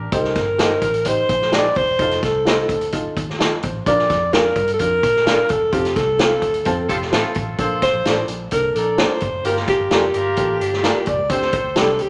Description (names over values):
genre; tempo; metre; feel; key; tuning
uptempo 1960s-style soul; 129 BPM; 4/4; straight; unclear; A4 = 439 Hz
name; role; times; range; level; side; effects
clear horn section; second line; 0.0-0.1, 6.9-12.0 s; Bb3 to D5; -29 LUFS; equal; none
vintage muted fingered electric bass; bass; 0.0-12.1 s; E1 to Bb2; -32 LUFS; equal; none
breathy alto saxophone; melody; 0.1-12.1 s; G4 to D5; -21 LUFS; equal; none
clear upright piano; accompaniment; 0.1-12.0 s; Bb3 to D5; -30 LUFS; equal; none
vintage drum kit; drums; 0.1-12.1 s; hi-hat, kick drum, snare drum; -24 LUFS; equal; none
electric guitar through a small old amp; stabs; 0.6-11.9 s; F4 to F5; -29 LUFS; equal; none
archtop guitar, miked and amplified; riff; 6.7-7.6 s; A3 to A4; -28 LUFS; equal; none
room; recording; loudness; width
moderate large studio reverb, RT60 1.2 s; none; -19 LUFS; mono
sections
0.0-7.6 A section; 7.6-12.1 B section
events
band accent 5.7-7.6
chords
0.1 Cm; 2.0 F7; 3.9 Bb; 5.7 F; 7.6 Bbmaj7; 9.4 Gm7; 11.3 D7sus4